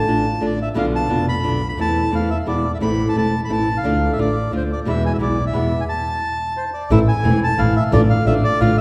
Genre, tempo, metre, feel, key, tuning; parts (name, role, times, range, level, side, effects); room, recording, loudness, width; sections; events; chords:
tango; 176 BPM; 3/4; rubato; A harmonic minor; A4 = 438 Hz
bandoneon; melody; 0.0-8.8 s; C5 to B5; -25 LUFS; equal
nylon-string guitar; accompaniment; 0.0-8.8 s; B2 to F4; -23 LUFS; equal
clear double bass; bass; 0.0-8.8 s; E1 to E2; -23 LUFS; equal
wet concert hall reverb, RT60 2.4 s; heard from further back in the room; -19 LUFS; mono
0.0-6.9 A section; 6.9-8.8 A section
stop 5.9-6.9
0.0 Dm/A; 0.8 Bdim; 1.8 Am/E; 2.5 E; 2.8 Am; 3.8 Dm; 4.9 E; 5.9 N.C.; 6.9 Am; 7.9 Dm/A